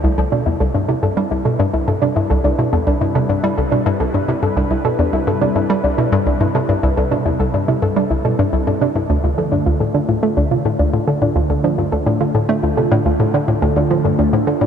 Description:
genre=ambient, sequencer-driven space music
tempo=106 BPM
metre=4/4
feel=straight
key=unclear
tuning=A4 = 438 Hz
part: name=phased analog pad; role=sustained chords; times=0.0-14.7 s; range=C3 to B4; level=-23 LUFS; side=equal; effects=phaser, chorus
part: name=soft round pluck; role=arpeggios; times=0.0-14.7 s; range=D4 to A4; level=-20 LUFS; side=right 1 dB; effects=chorus, auto-pan, ping-pong delay
part: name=hollow square pluck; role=riff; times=0.0-14.7 s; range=C2 to A3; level=-17 LUFS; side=equal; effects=chorus, ping-pong delay
room=moderate huge ambient reverb, RT60 8.4 s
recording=dark, warm production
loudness=-14 LUFS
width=side -8 dB against mid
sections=0.0-14.7 A section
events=fade-in on analog synth pad 0.0-14.7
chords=0.0 Cmaj7; 9.1 Dm

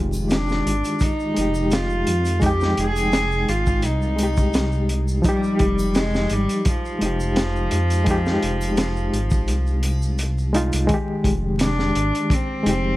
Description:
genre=trip hop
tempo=85 BPM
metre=4/4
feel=swing 54% on 16ths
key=F dorian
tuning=A4 = 440 Hz
part: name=overdriven reed electric piano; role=accompaniment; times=0.0-13.0 s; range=Eb3 to G5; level=-24 LUFS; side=left 1 dB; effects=fast tremolo
part: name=dark detuned saw bass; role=bass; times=0.0-13.0 s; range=F1 to F2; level=-22 LUFS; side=equal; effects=none
part: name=tube shaker and triangle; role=percussion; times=0.1-10.9 s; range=none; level=-41 LUFS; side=equal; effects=none
part: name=rich cello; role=melody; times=0.3-13.0 s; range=F3 to Ab4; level=-24 LUFS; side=equal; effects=vintage 12-bit sampler grit
part: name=crunchy breakbeat drum kit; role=drums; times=0.3-12.8 s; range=hi-hat, kick drum, snare drum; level=-23 LUFS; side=equal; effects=none
room=studio ambience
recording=vinyl crackle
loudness=-18 LUFS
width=side -17 dB against mid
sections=0.0-10.9 A section; 10.9-13.0 B section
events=kick drops out 9.5-10.9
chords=0.0 Fm7

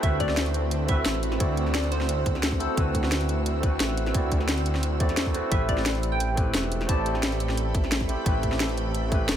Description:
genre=liquid drum and bass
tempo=175 BPM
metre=4/4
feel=straight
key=unclear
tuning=A4 = 440 Hz
part: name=glassy wavetable pluck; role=melody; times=0.0-2.9, 5.5-7.2 s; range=A4 to A5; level=-33 LUFS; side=equal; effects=chorus, vintage 12-bit sampler grit, dub echo
part: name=barky tine electric piano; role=accompaniment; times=0.0-9.4 s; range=A3 to D5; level=-30 LUFS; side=right 1 dB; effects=overdrive, lush chorus, dub echo
part: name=shimmering ambient pad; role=sustained chords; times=0.0-9.4 s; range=C4 to E6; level=-36 LUFS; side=right 1 dB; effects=chorus, built-in reverb, sidechain pumping
part: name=swelling detuned saw bass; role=bass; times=0.0-9.4 s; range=E1 to E2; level=-28 LUFS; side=equal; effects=none
part: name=electronic kick drum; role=drums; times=0.0-9.2 s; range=none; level=-26 LUFS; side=equal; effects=overdrive, small room ambience
part: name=garage drum kit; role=drums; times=0.0-9.4 s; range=hi-hat, snare drum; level=-29 LUFS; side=left 1 dB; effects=overdrive, small room ambience
room=digital ambience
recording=none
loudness=-23 LUFS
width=side -10 dB against mid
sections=0.0-9.4 A section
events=none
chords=0.0 D13; 5.5 Am9

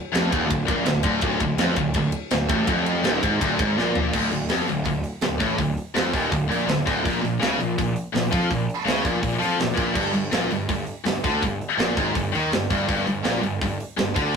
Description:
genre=heavy metal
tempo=165 BPM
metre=4/4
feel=straight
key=D harmonic minor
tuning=A4 = 440 Hz
part: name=heavy high-gain guitar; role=riff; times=0.1-14.4 s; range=D2 to F3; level=-24 LUFS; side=left 4 dB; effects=distortion
part: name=heavy high-gain guitar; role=riff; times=0.1-14.4 s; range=D2 to F3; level=-27 LUFS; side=right 6 dB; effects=distortion
part: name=fuzz picked electric bass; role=bass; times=0.1-14.3 s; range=D1 to F2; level=-29 LUFS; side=equal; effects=overdrive
part: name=tight metal drum kit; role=drums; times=0.1-14.3 s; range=crash cymbal, hi-hat, kick drum, ride cymbal, snare drum, toms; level=-26 LUFS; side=equal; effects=none
room=wet small room ambience, RT60 0.5 s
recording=rough rehearsal-room recording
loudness=-20 LUFS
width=side -6 dB against mid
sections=0.0-4.1 A section; 4.1-14.4 B section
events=drum fill 3.8-4.1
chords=0.0 Dm; 7.0 Bb5; 10.0 G5

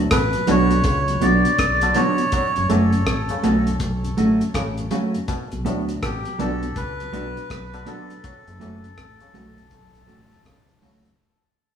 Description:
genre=roots reggae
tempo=81 BPM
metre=4/4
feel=swing 63% on 16ths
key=unclear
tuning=A4 = 440 Hz
part: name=mellow tonewheel organ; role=accompaniment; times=0.0-11.1 s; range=F#2 to F#4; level=-29 LUFS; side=left 2 dB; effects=slow rotary speaker
part: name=deep dub fingered electric bass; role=bass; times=0.0-11.2 s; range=F#1 to D2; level=-24 LUFS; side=equal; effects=none
part: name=melodica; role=melody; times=0.1-10.4 s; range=G4 to D5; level=-24 LUFS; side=equal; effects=tape echo
part: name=muted clav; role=arpeggios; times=0.1-11.0 s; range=A2 to F#3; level=-30 LUFS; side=left 4 dB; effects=none
part: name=cloth-damped thuddy drum kit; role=drums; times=0.1-11.2 s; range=hi-hat, kick drum, rim click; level=-26 LUFS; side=equal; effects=none
part: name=mellow electric guitar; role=accompaniment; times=0.5-11.1 s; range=F#3 to F#4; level=-22 LUFS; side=right 2 dB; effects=none
room=wet stone room reverb, RT60 1.1 s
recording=band playing live in one room, small room ambience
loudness=-18 LUFS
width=side -8 dB against mid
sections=0.0-11.2 A section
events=fade-out 0.0-11.2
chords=0.0 Bm; 2.3 F#m; 5.3 Bm; 8.2 F#m

